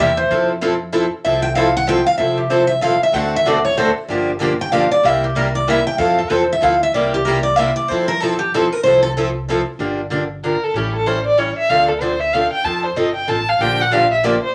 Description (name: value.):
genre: acoustic string swing (jazz manouche).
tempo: 190 BPM.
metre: 3/4.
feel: swing 61% on 8ths.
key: F major.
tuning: A4 = 440 Hz.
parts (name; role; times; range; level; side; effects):
picked steel-string acoustic guitar; melody; 0.0-9.1 s; G4 to G5; -19 LUFS; equal; none.
picked steel-string acoustic guitar; accompaniment; 0.0-14.3 s; C3 to A4; -24 LUFS; equal; none.
picked steel-string acoustic guitar; accompaniment; 0.0-9.6, 13.6-14.3 s; C3 to A4; -24 LUFS; equal; none.
upright bass; bass; 0.0-14.4 s; F1 to F2; -30 LUFS; equal; none.
warm violin; second line; 10.4-14.5 s; G4 to A5; -19 LUFS; equal; none.
room: wet small room reverb, RT60 0.6 s.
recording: vinyl crackle.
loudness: -17 LUFS.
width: mono.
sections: 0.0-2.2 A section; 2.2-9.8 A section; 9.8-14.5 A section.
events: steel-string acoustic guitar solo 0.0-9.8; violin solo 9.8-14.5.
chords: 0.3 Fmaj7; 3.1 D7; 4.1 Gm7; 5.0 C7; 6.0 Fmaj7; 6.9 C7; 7.9 Fmaj7; 9.8 Gm7; 10.7 A7; 11.7 Dm7; 12.6 F7; 13.6 Bb6.